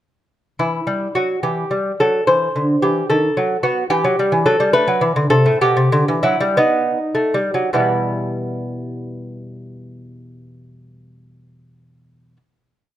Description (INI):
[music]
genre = classical, baroque-style dance for lute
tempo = 50-74 BPM (dotted quarters)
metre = 6/8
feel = rubato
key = E minor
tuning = A4 = 440 Hz
[part]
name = lute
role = solo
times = 0.6-12.4 s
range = E2 to C5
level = -16 LUFS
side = equal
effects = none
[sound]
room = light reverb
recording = close, detailed microphones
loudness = -15 LUFS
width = side -12 dB against mid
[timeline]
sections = 0.6-7.7 A section; 7.7-12.4 final chord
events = slowing down 3.1-7.7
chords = 0.6 Em; 2.3 D9sus4; 3.1 B7/D#; 3.9 Em; 4.7 Am; 5.6 Em/B; 6.6 B7; 7.7 Em